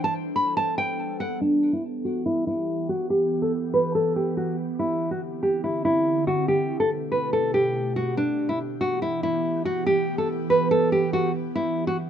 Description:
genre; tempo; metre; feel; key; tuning
hip hop; 142 BPM; 4/4; half-time; E minor; A4 = 441 Hz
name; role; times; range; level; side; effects
nylon-string guitar; melody; 0.0-12.0 s; D4 to B5; -23 LUFS; equal; low-pass filter
ethereal airy pad; sustained chords; 0.0-12.1 s; B2 to A4; -28 LUFS; right 1 dB; ensemble chorus, built-in reverb, low-pass filter
room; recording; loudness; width
light reverb; rough home demo mix; -22 LUFS; side -9 dB against mid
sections
0.0-1.4 A section; 1.4-8.2 B section; 8.2-12.1 C section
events
filter sweep 1.4-8.2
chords
0.0 Gadd9; 1.4 Em; 4.8 Cadd9; 6.5 Gadd9; 8.2 Em; 11.6 Cadd9

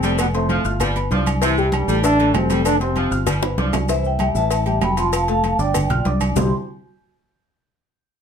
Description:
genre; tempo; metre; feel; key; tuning
latin, salsa; 194 BPM; 4/4; straight; C major; A4 = 438 Hz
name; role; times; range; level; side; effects
warm trombone section; melody; 0.0-3.2 s; G2 to D4; -20 LUFS; equal; none
bright saxophone section; second line; 0.0-3.7 s; C3 to G3; -26 LUFS; right 2 dB; none
dark concert grand piano; accompaniment; 0.0-6.5 s; C3 to F6; -24 LUFS; left 3 dB; none
fingered electric bass; bass; 0.0-6.5 s; F1 to C2; -22 LUFS; right 1 dB; none
agogo bells and timbales; percussion; 0.0-6.4 s; none; -28 LUFS; right 4 dB; none
cowbell and bongos; percussion; 0.0-6.4 s; none; -28 LUFS; left 8 dB; none
maracas; percussion; 0.0-6.4 s; none; -34 LUFS; left 8 dB; none
congas; percussion; 0.2-6.4 s; none; -27 LUFS; left 1 dB; none
vibraphone with medium mallets; melody; 3.9-6.5 s; C5 to C6; -22 LUFS; right 1 dB; none
room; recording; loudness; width
moderate small room reverb, RT60 0.5 s; none; -16 LUFS; side -7 dB against mid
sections
0.0-3.9 A section; 3.9-6.4 B section; 6.4-7.6 C section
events
drum fill 3.3-3.9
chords
0.2 F; 0.8 G7; 1.4 C; 2.0 Am7; 2.7 F; 3.3 G7; 3.9 C; 4.5 A5; 5.1 F; 5.7 G7; 6.4 C5

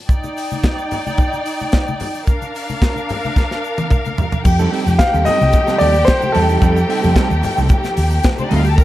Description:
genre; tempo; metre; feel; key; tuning
disco; 110 BPM; 4/4; straight; unclear; A4 = 440 Hz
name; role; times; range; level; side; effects
clear studio string section; second line; 0.1-8.8 s; C4 to Bb5; -22 LUFS; left 1 dB; none
tight funk drum kit; drums; 0.1-8.8 s; crash cymbal, hi-hat, kick drum, snare drum, toms; -17 LUFS; equal; none
congas; percussion; 0.1-8.6 s; none; -27 LUFS; left 4 dB; none
tube shaker; percussion; 0.1-8.8 s; none; -42 LUFS; right 7 dB; none
mellow electric guitar; accompaniment; 4.5-8.8 s; G3 to A4; -23 LUFS; right 6 dB; spring reverb
rich studio string section; sustained chords; 4.5-8.8 s; Bb2 to G4; -26 LUFS; left 1 dB; none
hollow-body short-scale fingered electric bass; bass; 4.5-8.8 s; C2 to F2; -15 LUFS; equal; none
clear concert grand piano; melody; 5.0-8.5 s; A4 to F5; -18 LUFS; equal; none
room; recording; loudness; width
small room ambience; dark, warm production; -14 LUFS; side -15 dB against mid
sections
0.0-4.5 A section; 4.5-8.8 B section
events
drum fill 3.4-4.5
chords
0.1 Ebmaj7; 2.3 Bb/D; 4.5 F9

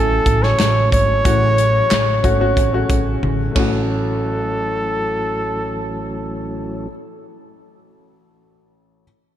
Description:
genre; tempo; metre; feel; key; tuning
piano-driven pop; 91 BPM; 4/4; straight; A major; A4 = 439 Hz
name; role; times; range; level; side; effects
mellow trumpet; melody; 0.0-6.9 s; A4 to C#5; -20 LUFS; equal; none
clear upright piano; accompaniment; 0.0-9.0 s; A1 to G#5; -24 LUFS; left 3 dB; slapback echo
mellow tonewheel organ; sustained chords; 0.0-6.9 s; A2 to G#4; -28 LUFS; right 2 dB; overdrive, fast rotary speaker
upright bass; bass; 0.0-6.9 s; G#1 to A1; -21 LUFS; equal; none
modern studio drum kit; drums; 0.3-3.7 s; handclaps, hi-hat, kick drum, ride cymbal, snare drum, toms; -20 LUFS; equal; none
room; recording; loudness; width
moderate lush hall reverb, RT60 2.7 s; big arena sound; -15 LUFS; side -11 dB against mid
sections
0.0-3.9 A section; 3.9-6.5 B section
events
drum fill 3.2-3.9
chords
0.0 A6

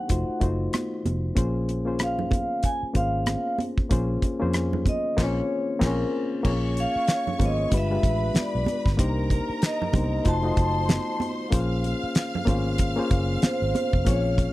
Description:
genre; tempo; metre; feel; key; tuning
lush 1970s-style soul; 94 BPM; 4/4; swing 58% on 16ths; Bb minor; A4 = 440 Hz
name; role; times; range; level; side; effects
vibraphone with medium hard mallets; melody; 0.0-14.5 s; Bb4 to A5; -28 LUFS; equal; none
reed electric piano; accompaniment; 0.0-14.5 s; Ab3 to Eb5; -28 LUFS; left 2 dB; none
vintage muted fingered electric bass; bass; 0.1-14.5 s; F1 to F2; -27 LUFS; equal; none
damped 70s drum kit; drums; 0.1-14.5 s; crash cymbal, hi-hat, kick drum, rim click, snare drum; -24 LUFS; equal; none
congas; percussion; 0.7-14.2 s; none; -32 LUFS; right 4 dB; none
rich studio string section; second line; 6.4-14.5 s; Bb4 to F6; -34 LUFS; right 1 dB; none
room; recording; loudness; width
small room ambience; dry, close 1970s-style studio recording; -22 LUFS; side -17 dB against mid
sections
0.0-6.4 A section; 6.4-14.5 B section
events
band accent 5.2-6.4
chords
0.1 F7b9; 1.4 Bbm9; 7.7 G7b9; 9.0 Cm7; 10.3 F7b9; 11.5 Bbm9

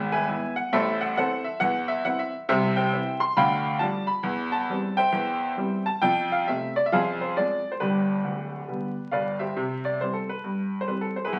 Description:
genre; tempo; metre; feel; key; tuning
jazz, stride piano; 136 BPM; 4/4; swing 64% on 8ths; C major; A4 = 440 Hz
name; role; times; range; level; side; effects
bright grand piano; solo; 0.0-11.4 s; D1 to C6; -26 LUFS; equal; none
room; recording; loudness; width
wet studio reverb, RT60 0.7 s; very old 78 rpm record, vinyl crackle; -26 LUFS; mono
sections
0.0-9.6 A section; 9.6-11.4 B section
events
none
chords
0.0 E/G#; 0.7 Am; 2.5 C; 3.4 G7/D; 4.3 C/E; 6.0 F; 6.9 Fm; 7.8 G; 9.6 C

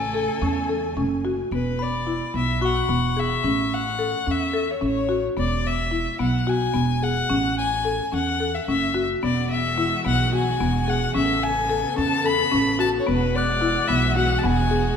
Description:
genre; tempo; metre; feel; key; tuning
contemporary instrumental, chamber music in an uneven meter; 218 BPM (eighths); 7/8; straight; A major; A4 = 440 Hz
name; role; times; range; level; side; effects
warm violin; melody; 0.0-15.0 s; A4 to B5; -25 LUFS; left 5 dB; none
warm symphonic string section; sustained chords; 0.0-1.5, 9.2-15.0 s; C#3 to G#5; -30 LUFS; left 1 dB; none
buzzing marimba with medium mallets; arpeggios; 0.0-15.0 s; B3 to A4; -24 LUFS; left 2 dB; none
upright bass; bass; 0.0-14.9 s; E1 to E2; -26 LUFS; right 3 dB; none
glockenspiel with brass mallets; texture; 0.0-3.2, 13.4-14.0 s; G#5 to F#6; -31 LUFS; left 3 dB; none
room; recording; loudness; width
moderate scoring stage reverb, RT60 1.9 s; minimal, uncompressed stereo recording; -20 LUFS; side -7 dB against mid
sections
0.0-1.5 A section; 1.5-15.0 B section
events
none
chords
0.0 Amaj7; 1.5 Eadd9; 3.4 A; 5.4 Eadd9; 7.3 A; 9.2 Eadd9; 11.2 Aadd9; 13.1 Eadd9

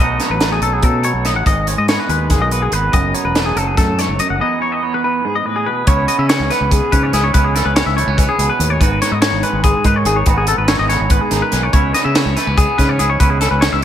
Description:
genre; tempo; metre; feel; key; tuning
math rock and midwest emo; 286 BPM (eighths); 7/8; straight; unclear; A4 = 439 Hz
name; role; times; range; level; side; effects
twangy electric guitar; accompaniment; 0.0-13.8 s; E2 to G#4; -21 LUFS; right 6 dB; spring reverb
twangy electric guitar; arpeggios; 0.0-13.8 s; G#4 to F#5; -18 LUFS; left 4 dB; lush chorus
growling fingered electric bass; bass; 0.0-13.8 s; E1 to C#3; -18 LUFS; equal; overdrive
crisp fusion drum kit; drums; 0.2-13.7 s; hi-hat, kick drum, snare drum; -17 LUFS; equal; none
room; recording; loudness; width
moderate lush hall reverb, RT60 2.1 s; big arena sound; -13 LUFS; side -10 dB against mid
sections
0.0-5.9 A section; 5.9-13.8 B section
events
break 4.4-5.9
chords
0.0 B7; 1.5 G#m7; 2.9 F#m11; 4.4 Emaj7; 5.9 C#m7; 8.8 G#m7; 11.7 C#m7

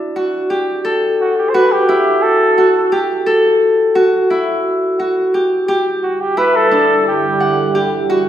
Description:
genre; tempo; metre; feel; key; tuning
contemporary instrumental, chamber music in an uneven meter; 174 BPM (eighths); 7/8; straight; E minor; A4 = 442 Hz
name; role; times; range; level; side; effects
Celtic harp; arpeggios; 0.0-8.3 s; D4 to F#5; -14 LUFS; equal; none
clear flugelhorn; melody; 1.2-7.8 s; F#4 to C5; -14 LUFS; right 1 dB; none
deep dark ambient pad; sustained chords; 6.3-8.3 s; E2 to F#5; -21 LUFS; right 3 dB; chorus, built-in reverb
room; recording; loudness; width
wet recital hall reverb, RT60 1.6 s; heard from further back in the room; -12 LUFS; side -10 dB against mid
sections
0.0-8.3 A section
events
none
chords
0.0 Dadd9; 0.9 A5; 5.7 Em7

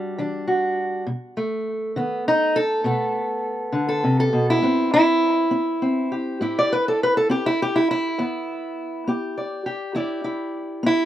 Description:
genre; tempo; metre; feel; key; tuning
acoustic country blues, solo or duo; 68 BPM (dotted quarters); 12/8; straight; E minor; A4 = 440 Hz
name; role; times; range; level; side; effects
fingerpicked steel-string acoustic guitar; solo; 0.0-11.1 s; E2 to D5; -20 LUFS; equal; none
room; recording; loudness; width
light reverb; recorded outdoors, with no room sound; -20 LUFS; side -12 dB against mid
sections
0.0-11.1 A section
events
steel-string acoustic guitar solo 0.0-11.1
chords
0.0 Em9; 1.1 B7; 4.6 Am9; 8.2 Em7

